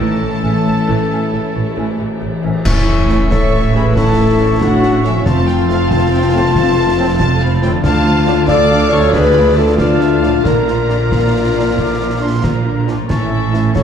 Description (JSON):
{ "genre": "cinematic, heroic adventure film score", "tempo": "92 BPM (dotted quarters)", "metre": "12/8", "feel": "straight", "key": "unclear", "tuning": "A4 = 441 Hz", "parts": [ { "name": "warm symphonic violin section", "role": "melody", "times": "0.0-12.8 s", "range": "C#5 to A5", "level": "-25 LUFS", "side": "left 3 dB", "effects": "none" }, { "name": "clear oboe", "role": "second line", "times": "0.0-13.8 s", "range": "A4 to A5", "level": "-26 LUFS", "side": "right 1 dB", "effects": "none" }, { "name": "rich symphonic violin section", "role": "second line", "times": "0.0-13.8 s", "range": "C#4 to D6", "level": "-26 LUFS", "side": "left 2 dB", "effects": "none" }, { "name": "warm symphonic viola section", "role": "accompaniment", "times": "0.0-13.8 s", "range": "C#3 to F4", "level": "-24 LUFS", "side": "equal", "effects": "none" }, { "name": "clear trombone section", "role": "sustained chords", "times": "0.0-13.6 s", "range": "A2 to D4", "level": "-27 LUFS", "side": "right 3 dB", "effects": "none" }, { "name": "dark French horn section", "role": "sustained chords", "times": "0.0-13.8 s", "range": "A3 to D5", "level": "-18 LUFS", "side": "left 5 dB", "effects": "none" }, { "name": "concert harp", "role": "arpeggios", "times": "0.0-13.8 s", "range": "A2 to A5", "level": "-24 LUFS", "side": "left 7 dB", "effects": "none" }, { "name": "dark trumpet section", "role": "stabs", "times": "0.0-13.8 s", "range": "E4 to D5", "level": "-24 LUFS", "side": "right 2 dB", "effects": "none" }, { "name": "rich symphonic cello section", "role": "bass", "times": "0.0-13.8 s", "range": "D2 to A3", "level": "-19 LUFS", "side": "right 2 dB", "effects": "none" }, { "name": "warm symphonic double bass section", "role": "bass", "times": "0.0-13.8 s", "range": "F1 to D2", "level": "-19 LUFS", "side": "right 3 dB", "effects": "none" }, { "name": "mellow clarinet", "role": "second line", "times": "0.4-13.8 s", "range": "C4 to A4", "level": "-22 LUFS", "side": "left 2 dB", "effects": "none" }, { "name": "silver concert flute", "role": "second line", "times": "0.4-13.8 s", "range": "E5 to D6", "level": "-27 LUFS", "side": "equal", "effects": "none" }, { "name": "concert snare drum, clash cymbals and concert bass drum", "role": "drums", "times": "2.7-13.8 s", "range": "none", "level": "-22 LUFS", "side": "equal", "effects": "none" }, { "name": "clash cymbals and concert bass drum", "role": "percussion", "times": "2.7-3.5 s", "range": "none", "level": "-20 LUFS", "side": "equal", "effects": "none" } ], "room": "wet scoring stage reverb, RT60 2.1 s", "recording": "dark, warm production", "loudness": "-11 LUFS", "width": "side -8 dB against mid", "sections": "0.0-2.7 A section; 2.7-13.8 B section", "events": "band accent 2.7-3.1", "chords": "0.0 A; 5.3 F; 7.8 Dm; 10.5 Bb; 13.1 A" }